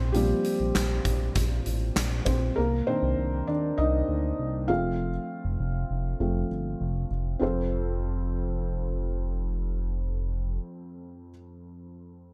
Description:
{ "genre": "piano-driven pop", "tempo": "99 BPM", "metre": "4/4", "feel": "straight", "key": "F mixolydian", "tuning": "A4 = 440 Hz", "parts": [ { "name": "felt-muted upright piano", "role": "accompaniment", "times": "0.0-12.3 s", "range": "F2 to F5", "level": "-32 LUFS", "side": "equal", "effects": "plate reverb" }, { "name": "chorused synth bass", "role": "bass", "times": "0.0-10.6 s", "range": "F1 to Eb2", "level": "-31 LUFS", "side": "equal", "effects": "none" }, { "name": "huge arena drum kit", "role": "drums", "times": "0.1-2.4 s", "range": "handclaps, hi-hat, kick drum, snare drum", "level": "-33 LUFS", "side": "equal", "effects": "none" } ], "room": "light reverb", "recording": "none", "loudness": "-28 LUFS", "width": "mono", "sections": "0.0-7.4 A section; 7.4-9.8 B section", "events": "felt piano solo 0.0-7.4", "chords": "0.0 Bbsus2; 2.6 Cmadd9; 4.7 F" }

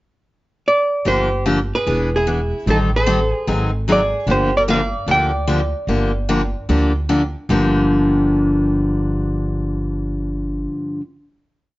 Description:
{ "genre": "acoustic string swing (jazz manouche)", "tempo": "149 BPM", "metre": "4/4", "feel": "swing 64% on 8ths", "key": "G minor", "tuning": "A4 = 435 Hz", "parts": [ { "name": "archtop guitar, miked and amplified", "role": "melody", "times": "0.7-7.1 s", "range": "G#4 to G5", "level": "-18 LUFS", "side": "right 1 dB", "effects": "none" }, { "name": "picked acoustic archtop guitar", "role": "second line", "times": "1.1-7.1 s", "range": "Eb4 to D5", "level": "-27 LUFS", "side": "right 2 dB", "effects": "none" }, { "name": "picked steel-string acoustic guitar", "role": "accompaniment", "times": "1.1-11.0 s", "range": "G2 to A4", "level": "-18 LUFS", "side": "left 1 dB", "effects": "none" }, { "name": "upright bass", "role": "bass", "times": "1.1-10.6 s", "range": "E1 to D2", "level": "-22 LUFS", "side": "equal", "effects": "none" } ], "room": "light reverb", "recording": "worn, warbling old tape, cassette tape, warbly pitch drift, nothing above 7.6 kHz", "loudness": "-16 LUFS", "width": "side -19 dB against mid", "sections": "0.0-1.1 pickup bar; 1.1-7.5 A section; 7.5-10.7 final chord", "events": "none", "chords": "0.0 N.C.; 1.1 Gm7; 1.9 E7; 2.7 Am7b5; 3.5 Ab7#11; 4.3 Gm7" }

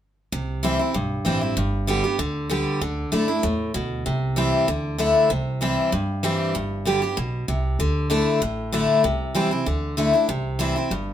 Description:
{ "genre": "bluegrass", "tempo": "193 BPM", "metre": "4/4", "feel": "straight", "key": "unclear", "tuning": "A4 = 440 Hz", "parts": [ { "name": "picked steel-string acoustic guitar", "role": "accompaniment", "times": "0.3-11.1 s", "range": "G2 to G4", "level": "-21 LUFS", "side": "left 1 dB", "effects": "none" }, { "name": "upright bass", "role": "bass", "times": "0.3-11.1 s", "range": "G1 to G2", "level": "-28 LUFS", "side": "right 1 dB", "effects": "none" } ], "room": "light reverb", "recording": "minimal, uncompressed stereo recording, faint mains hum", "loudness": "-20 LUFS", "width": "side -10 dB against mid", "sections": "0.3-11.1 A section", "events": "none", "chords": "0.3 C; 1.6 G; 2.8 Dsus2; 4.1 C; 4.7 Dsus2; 5.3 C; 6.5 G; 7.8 Dsus2; 9.0 C; 9.7 Dsus2; 10.3 C" }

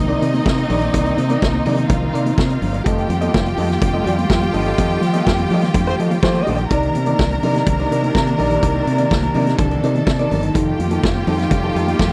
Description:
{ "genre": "disco", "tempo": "125 BPM", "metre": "4/4", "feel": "straight", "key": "unclear", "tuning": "A4 = 440 Hz", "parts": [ { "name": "bright studio violin section", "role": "second line", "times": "0.0-12.1 s", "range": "Eb4 to Bb5", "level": "-28 LUFS", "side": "equal", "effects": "none" }, { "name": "dark symphonic string section", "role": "sustained chords", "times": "0.0-12.1 s", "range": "C3 to F4", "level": "-25 LUFS", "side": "equal", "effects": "none" }, { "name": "fingered electric bass", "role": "bass", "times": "0.0-12.1 s", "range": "F1 to F3", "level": "-23 LUFS", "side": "equal", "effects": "none" }, { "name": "electric guitar at the edge of break-up", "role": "accompaniment", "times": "0.1-12.0 s", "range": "Eb4 to Eb5", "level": "-26 LUFS", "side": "equal", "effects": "none" }, { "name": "congas", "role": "percussion", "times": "0.1-12.1 s", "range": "none", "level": "-29 LUFS", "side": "equal", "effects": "none" }, { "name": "vintage drum kit", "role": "drums", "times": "0.2-12.1 s", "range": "hi-hat, kick drum, snare drum", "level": "-22 LUFS", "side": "equal", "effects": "none" }, { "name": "warm horn section", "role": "stabs", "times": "5.9-6.6 s", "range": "A3 to C5", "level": "-23 LUFS", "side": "equal", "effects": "none" } ], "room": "little or no reverb", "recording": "dry, close 1970s-style studio recording", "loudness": "-17 LUFS", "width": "mono", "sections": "0.0-12.1 A section", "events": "band accent 4.8-6.7", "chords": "0.0 Cm9; 2.9 F9; 6.7 Cm9; 10.6 F9" }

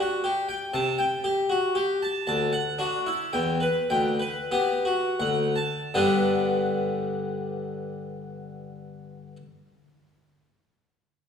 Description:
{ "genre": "classical, baroque-style suite movement for harpsichord", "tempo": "78-121 BPM", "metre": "3/4", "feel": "rubato", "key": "G major", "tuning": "A4 = 440 Hz", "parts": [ { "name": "harpsichord", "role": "solo", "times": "0.0-9.4 s", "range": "D2 to A5", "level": "-24 LUFS", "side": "left 1 dB", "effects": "none" } ], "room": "wet concert hall reverb, RT60 1.8 s", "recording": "recorded in a church or concert hall, small room ambience", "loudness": "-23 LUFS", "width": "side -7 dB against mid", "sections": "0.0-5.9 A section; 5.9-10.5 B section", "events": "slowing down 1.5-5.9", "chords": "0.0 N.C.; 0.7 Am7/C; 2.3 D; 3.3 Em; 3.9 G/D; 5.2 D; 5.9 G" }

